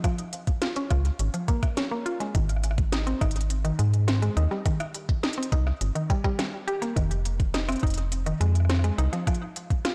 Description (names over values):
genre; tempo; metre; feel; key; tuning
IDM; 104 BPM; 4/4; straight; F minor; A4 = 441 Hz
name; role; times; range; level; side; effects
mallet-like synth pluck; arpeggios; 0.0-9.9 s; Eb3 to G4; -33 LUFS; equal; chorus, digital delay
electronic kick drum; drums; 0.0-9.8 s; none; -27 LUFS; equal; studio reverb
organic electronic drum kit; drums; 0.0-9.9 s; hi-hat, rim click, snare drum; -35 LUFS; equal; soft clipping on snare, studio reverb, digital delay
metallic FM bass; bass; 0.9-9.1 s; F1 to Ab2; -27 LUFS; equal; none
room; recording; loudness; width
light reverb, digital ambience; blown-out, overdriven recording, overdrive; -26 LUFS; mono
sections
0.0-9.9 A section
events
filter sweep on synth arpeggio sound 0.0-9.9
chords
0.0 Db6; 2.3 Ab; 4.7 Cm; 7.0 Fm7; 9.3 N.C.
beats
| 0.04 0.62 1.20 1.77 | 2.35 2.92 3.50 4.08 | 4.66 5.23 5.81 6.39 | 6.96 7.54 8.12 8.70 | 9.27 9.85